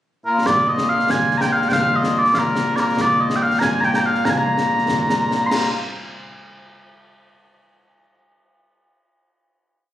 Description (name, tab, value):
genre	scottish traditional, Scottish pipe music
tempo	95 BPM (dotted quarters)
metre	6/8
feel	straight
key	Bb mixolydian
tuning	A4 = 440 Hz
part	mellow small bagpipes	melody	0.3-5.7 s	Bb2 to C6	-17 LUFS	equal	slapback echo
part	concert snare drum, concert bass drum and clash cymbals	drums	0.5-5.6 s	none	-24 LUFS	left 1 dB	none
room	moderate recital hall reverb, RT60 1.5 s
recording	recorded on a phone in the room, studio reverb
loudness	-16 LUFS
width	side -12 dB against mid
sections	0.0-0.5 pickup bar; 0.5-5.5 A section; 5.5-6.8 final note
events	none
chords	none